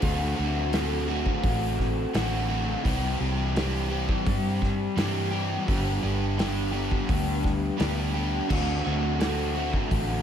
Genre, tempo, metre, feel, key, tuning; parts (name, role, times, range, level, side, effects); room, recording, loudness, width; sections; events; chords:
rock, shoegaze and dream pop; 85 BPM; 4/4; straight; D mixolydian; A4 = 439 Hz
overdriven semi-hollow guitar; riff; 0.0-10.2 s; G2 to G4; -27 LUFS; equal; wide subtle chorus
vintage muted fingered electric bass; bass; 0.0-10.2 s; G1 to G2; -29 LUFS; equal
loose indie drum kit; drums; 0.0-10.1 s; crash cymbal, hi-hat, kick drum, snare drum; -30 LUFS; equal
light reverb, studio reverb; -24 LUFS; side -9 dB against mid
0.0-10.2 A section
0.0 D7; 2.8 C; 5.7 G; 8.5 D7